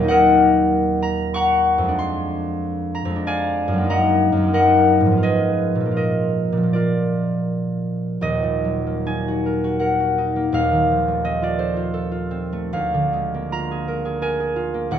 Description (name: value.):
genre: classical, solo harp piece.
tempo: 69-97 BPM.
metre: 3/4.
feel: rubato.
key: Eb minor.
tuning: A4 = 444 Hz.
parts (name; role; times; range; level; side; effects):
concert harp; solo; 0.0-15.0 s; Eb1 to Db6; -17 LUFS; equal; none.
room: wet recital hall reverb, RT60 1.5 s.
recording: dark, warm production.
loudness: -18 LUFS.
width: side -9 dB against mid.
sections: 0.0-8.2 A section; 8.2-15.0 B section.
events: none.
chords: 0.1 Ebm; 2.0 Ddim/F; 3.9 Ebm/Gb; 5.2 Fdim/Ab; 6.0 Bb; 8.2 Ebm; 10.5 F7/Eb; 12.7 Bb7/D.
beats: | 0.10 0.73 1.35 | 1.98 2.62 3.26 | 3.90 4.54 5.22 | 5.95 6.72 7.46 | 8.21 9.05 9.80 | 10.53 11.24 11.95 | 12.72 13.51 14.22 | 14.91.